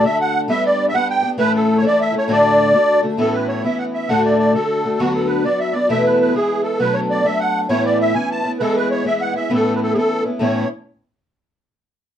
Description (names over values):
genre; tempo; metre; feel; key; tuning
celtic folk, Celtic polka; 133 BPM; 2/4; swing 64% on 8ths; D major, A major from 3.2 s; A4 = 441 Hz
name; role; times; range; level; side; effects
musette accordion; melody; 0.0-10.7 s; F#4 to A5; -18 LUFS; right 1 dB; none
fingerpicked twelve-string acoustic guitar; accompaniment; 0.0-10.6 s; D2 to G4; -18 LUFS; left 1 dB; none
room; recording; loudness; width
wet studio ambience, RT60 0.5 s; dark, warm production; -15 LUFS; side -10 dB against mid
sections
0.0-3.2 A section; 3.2-10.4 B section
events
none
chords
0.5 G; 1.4 A; 2.3 D; 3.2 Aadd9; 4.1 D; 5.0 Bm/D; 5.9 Esus4; 6.3 E; 6.8 Bm7; 7.7 Aadd9; 8.6 E; 9.5 Aadd9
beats
0.04 | 0.49 0.94 | 1.39 1.84 | 2.29 2.74 | 3.19 3.64 | 4.09 4.54 | 5.00 5.45 | 5.90 6.35 | 6.80 7.25 | 7.70 8.15 | 8.60 9.05 | 9.51 9.96 | 10.41